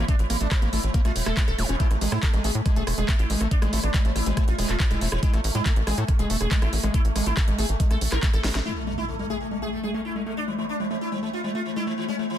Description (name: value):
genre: psychedelic trance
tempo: 140 BPM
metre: 4/4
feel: straight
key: unclear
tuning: A4 = 440 Hz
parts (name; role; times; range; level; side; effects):
- sitar; melody; 0.0-12.4 s; E3 to Bb4; -32 LUFS; right 1 dB; phaser, sidechain pumping, digital delay
- evolving wavetable pad; sustained chords; 0.0-12.4 s; A3; -33 LUFS; left 2 dB; chorus, built-in reverb, sidechain pumping
- overdriven acid bass; riff; 0.0-12.3 s; G#3 to E4; -31 LUFS; moving between left 5 dB and right 4 dB; distortion, auto-pan, sidechain pumping, digital delay
- tight sequencer bass; bass; 0.0-8.6 s; E1 to A2; -25 LUFS; equal; none
- drum and bass drum kit; drums; 0.1-8.6 s; handclaps, hi-hat, rim click, snare drum; -30 LUFS; equal; overdrive
- electronic kick drum; drums; 0.1-8.3 s; none; -22 LUFS; equal; none
- zap and impact; sound effects; 1.6-1.7, 8.7-10.4 s; none; -36 LUFS; equal; none
room: little or no reverb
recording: dense, heavily limited modern master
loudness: -22 LUFS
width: side -11 dB against mid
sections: 0.0-8.7 A section; 8.7-12.4 B section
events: drop 0.0-8.7; drum fill 8.4; impact 8.7-10.4; filter sweep on acid bass 8.7-12.4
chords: 0.0 A5